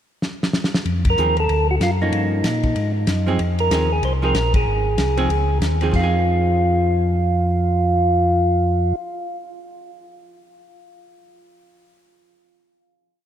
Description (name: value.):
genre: soul jazz organ trio.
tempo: 189 BPM.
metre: 4/4.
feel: swing 61% on 8ths.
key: F minor.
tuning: A4 = 441 Hz.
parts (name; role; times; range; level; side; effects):
warm soul drum kit; drums; 0.2-6.0 s; crash cymbal, hi-hat, kick drum, ride cymbal, snare drum; -24 LUFS; equal; none.
mellow tonewheel organ; bass; 0.8-8.9 s; Ab1 to Bb2; -20 LUFS; equal; overdrive, chorus vibrato, slow rotary speaker.
percussive tonewheel organ; melody; 1.1-9.0 s; Eb4 to C5; -21 LUFS; right 1 dB; slow rotary speaker.
archtop guitar, miked and amplified; accompaniment; 1.2-9.1 s; F3 to Ab4; -27 LUFS; right 4 dB; none.
room: moderate cathedral reverb, RT60 4.9 s.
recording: in a vast, echoing space.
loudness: -17 LUFS.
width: side -10 dB against mid.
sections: 0.0-0.8 pickup bar; 0.8-5.9 A section; 5.9-8.5 final chord.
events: drum fill 0.2-0.8; band accent 1.0, 4.5.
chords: 0.0 N.C.; 0.8 Fm7; 1.5 D; 2.1 Gm7b5; 2.8 Ab7; 3.4 Fm7.